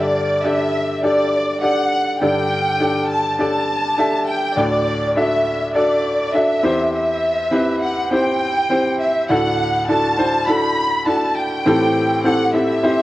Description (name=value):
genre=piano-driven pop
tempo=102 BPM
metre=4/4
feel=straight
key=unclear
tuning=A4 = 440 Hz
part: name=warm symphonic violin section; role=melody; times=0.0-13.0 s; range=D5 to B5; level=-19 LUFS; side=equal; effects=cassette tape
part: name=bright upright piano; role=accompaniment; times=0.0-13.0 s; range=D2 to E5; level=-18 LUFS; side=equal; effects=cassette tape
room=wet spring reverb, RT60 1.7 s, studio reverb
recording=home recording on cassette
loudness=-16 LUFS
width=side -16 dB against mid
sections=0.0-9.3 A section; 9.3-13.0 B section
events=none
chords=0.0 Gsus2; 4.6 D; 6.6 C/E; 9.3 Dadd9; 11.7 Am7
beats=0.44 1.03 1.62 | 2.21 2.80 3.39 3.98 | 4.57 5.16 5.75 6.34 | 6.93 7.52 8.11 8.70 | 9.29 9.88 10.48 11.07 | 11.66 12.25 12.84